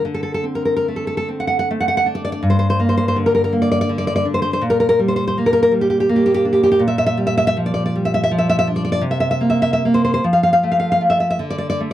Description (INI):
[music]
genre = romantic piece for solo classical guitar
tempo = 46-56 BPM (dotted quarters)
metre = 6/8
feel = rubato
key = G minor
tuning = A4 = 440 Hz
[part]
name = nylon-string guitar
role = solo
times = 0.0-11.9 s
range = G2 to F#5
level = -15 LUFS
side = equal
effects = none
[sound]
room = light reverb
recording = dry, close 1970s-style studio recording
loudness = -15 LUFS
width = side -12 dB against mid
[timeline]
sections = 0.0-11.9 A section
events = none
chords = 0.0 D5; 2.4 Gm; 4.6 Gm/Bb; 6.8 Gm7/Bb; 9.0 C7; 10.2 F; 11.4 D5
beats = | 0.01 1.27 | 2.42 3.54 | 4.63 5.73 | 6.82 7.94 | 9.03 10.24 | 11.40